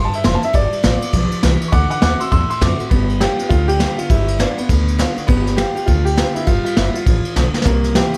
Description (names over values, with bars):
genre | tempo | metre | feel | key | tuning
rockabilly | 202 BPM | 4/4 | swing 62% on 8ths | G mixolydian | A4 = 440 Hz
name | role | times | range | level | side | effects
clear upright piano | melody | 0.0-8.2 s | Bb3 to E6 | -23 LUFS | equal | none
picked steel-string acoustic guitar | accompaniment | 0.0-8.2 s | G2 to F#4 | -26 LUFS | equal | none
upright bass | bass | 0.0-8.2 s | F1 to F#2 | -21 LUFS | equal | none
vintage brush drum kit | drums | 0.1-8.2 s | kick drum, ride cymbal, snare drum | -20 LUFS | equal | none
room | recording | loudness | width
light reverb | none | -16 LUFS | mono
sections
0.0-2.9 A section; 2.9-8.2 B section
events
upright piano solo 0.0-2.9; drum fill 7.5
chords
0.0 C7; 0.5 G7; 1.7 D7; 2.9 G7; 7.7 C7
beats
0.25 | 0.54 0.84 1.14 1.43 | 1.73 2.02 2.32 2.62 | 2.91 3.21 3.51 3.80 | 4.10 4.40 4.69 4.99 | 5.29 5.58 5.88 6.18 | 6.47 6.77 7.07 7.36 | 7.66 7.96